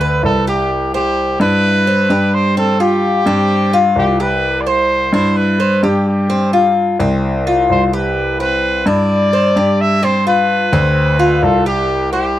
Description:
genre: latin, Cuban son and guajira.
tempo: 129 BPM.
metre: 4/4.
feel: straight.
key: C major.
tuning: A4 = 444 Hz.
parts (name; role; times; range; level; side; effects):
warm trumpet; melody; 0.0-12.4 s; G4 to E5; -16 LUFS; right 1 dB; none.
Cuban tres; arpeggios; 0.0-12.4 s; C4 to C5; -17 LUFS; left 1 dB; none.
warm baby grand piano; bass; 0.0-12.4 s; C2 to G2; -16 LUFS; left 1 dB; none.
room: little or no reverb.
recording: dry, close 1970s-style studio recording.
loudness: -12 LUFS.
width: side -13 dB against mid.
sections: 0.7-12.4 A section.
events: none.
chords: 0.0 G; 0.7 Cmaj7; 2.6 G7sus4; 4.4 Cmaj7; 6.3 G7sus4; 8.2 Cmaj7; 10.0 G7sus4.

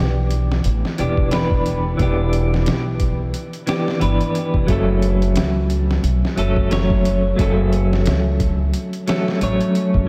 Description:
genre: trip hop.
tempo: 89 BPM.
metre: 4/4.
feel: swing 57% on 16ths.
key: unclear.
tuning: A4 = 441 Hz.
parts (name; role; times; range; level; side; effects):
semi-hollow electric guitar; accompaniment; 0.0-10.1 s; E3 to C#5; -22 LUFS; equal; tremolo, vintage 12-bit sampler grit, low-pass filter, tape echo.
upright bass; bass; 0.0-10.1 s; E1 to C#2; -22 LUFS; equal; tube saturation.
trip hop sampler-style drum kit; drums; 0.3-10.1 s; hi-hat, kick drum, snare drum; -26 LUFS; equal; none.
room: moderate cathedral reverb, RT60 4.3 s.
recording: dreamy mix soaked in reverb.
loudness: -19 LUFS.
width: mono.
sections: 0.0-10.1 A section.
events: none.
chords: 0.0 Em7; 4.7 F#m.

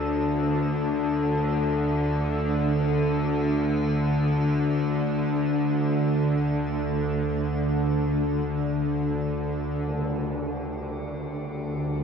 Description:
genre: dark ambient drone.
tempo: free time.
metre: none.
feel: none.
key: unclear.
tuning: A4 = 438 Hz.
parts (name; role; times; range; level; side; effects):
tubular bells; arpeggios; 0.0-9.9 s; D4 to A4; -38 LUFS; left 1 dB; ping-pong delay.
bowed-like drone; drone; 0.0-12.0 s; D2 to D3; -24 LUFS; equal; built-in reverb.
metallic inharmonic drone; texture; 0.0-12.0 s; G3 to A4; -36 LUFS; equal; chorus, built-in reverb.
sweeping resonant pad; sustained chords; 9.9-12.0 s; D3 to A3; -41 LUFS; equal; none.
tam-tam; percussion; 9.9-10.1 s; none; -37 LUFS; right 2 dB; low-pass filter on cymbals.
room: wet huge ambient reverb, RT60 7.7 s.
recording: none.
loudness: -23 LUFS.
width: side -6 dB against mid.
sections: 0.0-9.9 A section; 9.9-12.0 B section.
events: fade-out on synth drone 0.0-9.9.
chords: 0.0 D5.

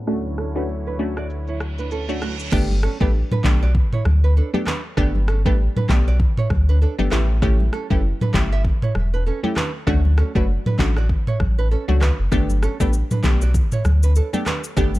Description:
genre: afrobeats.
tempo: 98 BPM.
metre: 4/4.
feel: swing 58% on 16ths.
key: unclear.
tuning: A4 = 440 Hz.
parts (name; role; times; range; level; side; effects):
warm analog pad; sustained chords; 0.0-2.5 s; D2 to C#5; -28 LUFS; equal; chorus.
glassy wavetable pluck; accompaniment; 0.1-15.0 s; A3 to G4; -25 LUFS; left 1 dB; chorus.
nylon-string guitar; riff; 0.1-14.9 s; A3 to E5; -30 LUFS; right 6 dB; digital delay.
afro-pop drum kit; drums; 0.1-15.0 s; crash cymbal, handclaps, kick drum, rim click, shaker, toms; -22 LUFS; equal; none.
reverse cymbal; sound effects; 1.5-2.5 s; none; -35 LUFS; right 5 dB; none.
sub bass with octave; bass; 2.5-15.0 s; E1 to D2; -18 LUFS; equal; none.
congas; percussion; 2.5-15.0 s; none; -28 LUFS; left 2 dB; none.
room: little or no reverb.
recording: dark, warm production, low-pass filter.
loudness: -17 LUFS.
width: side -17 dB against mid.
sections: 0.0-2.5 A section; 2.5-15.0 B section.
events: filter sweep 0.0-2.5; reverse cymbal 1.5-2.5; hi-hats muted 2.5-12.3.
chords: 0.1 Dmaj7; 2.5 Gadd9; 7.1 A7; 9.9 Dmaj7; 12.3 Gadd9.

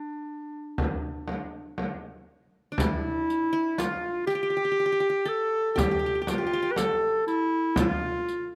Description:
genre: Turkish makam ensemble.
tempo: 120 BPM (eighths).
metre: 10/8.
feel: straight.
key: D makam huseyni.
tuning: A4 = 442 Hz.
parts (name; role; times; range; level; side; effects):
clear clarinet; melody; 0.0-8.5 s; D4 to B4-30c; -29 LUFS; equal; none.
qanun; second line; 0.0-8.6 s; D4 to A4; -34 LUFS; equal; none.
frame drum; percussion; 0.8-8.0 s; none; -32 LUFS; equal; none.
riq; percussion; 2.8-8.4 s; none; -39 LUFS; equal; none.
room: little or no reverb.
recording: close, detailed microphones.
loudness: -27 LUFS.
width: mono.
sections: 0.0-2.8 A section; 2.8-8.6 B section.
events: none.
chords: none.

